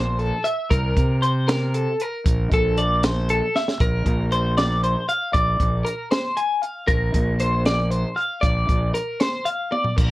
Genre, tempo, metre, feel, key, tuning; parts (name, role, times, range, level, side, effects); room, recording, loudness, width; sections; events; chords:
math rock and midwest emo; 78 BPM (dotted quarters); 6/8; straight; Bb lydian; A4 = 440 Hz
twelve-string electric guitar; arpeggios; 0.0-10.1 s; A4 to Ab5; -23 LUFS; left 1 dB
fuzz fingered electric bass; bass; 0.0-10.1 s; Bb1 to C3; -22 LUFS; equal; overdrive
compact cocktail drum kit; drums; 0.2-10.1 s; crash cymbal, hi-hat, kick drum, snare drum, toms; -23 LUFS; equal
little or no reverb; worn, warbling old tape, cassette tape, warbly pitch drift; -19 LUFS; side -17 dB against mid
0.0-3.8 A section; 3.8-10.1 B section
drum fill 3.5, 9.7
0.0 Bbmaj7sus2; 0.7 Bbsus2/C; 2.3 Bbmaj7; 3.8 Bbadd9; 5.3 Fm6/Bb; 6.9 Bbadd9